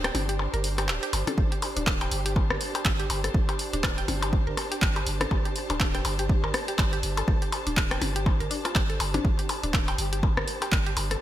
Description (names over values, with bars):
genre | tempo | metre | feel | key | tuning
minimal techno | 122 BPM | 4/4 | swing 58% on 16ths | unclear | A4 = 440 Hz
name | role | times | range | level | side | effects
mallet-like synth pluck | riff | 0.0-11.1 s | D4 to G5 | -35 LUFS | left 1 dB | chorus, sidechain pumping, digital delay
punchy sub bass | bass | 0.0-11.2 s | D1 to G1 | -31 LUFS | equal | sidechain pumping
punchy analog drum machine | drums | 0.0-11.2 s | handclaps, hi-hat | -30 LUFS | right 1 dB | none
electronic rim click and percussion blips | percussion | 0.0-11.2 s | none | -32 LUFS | left 3 dB | ping-pong delay
dark studio string section | texture | 0.0-11.2 s | D4 to A5 | -36 LUFS | right 1 dB | sidechain pumping
electronic kick drum | drums | 1.4-10.8 s | none | -26 LUFS | equal | none
breathy flute-like synth lead | melody | 2.1-3.2, 10.0-10.2 s | G4 | -41 LUFS | equal | ensemble chorus, ping-pong delay
room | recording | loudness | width
light reverb | bright 1980s-style digital production | -24 LUFS | side -12 dB against mid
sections
0.0-11.2 A section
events
break 0.0-1.4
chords
0.0 Gsus4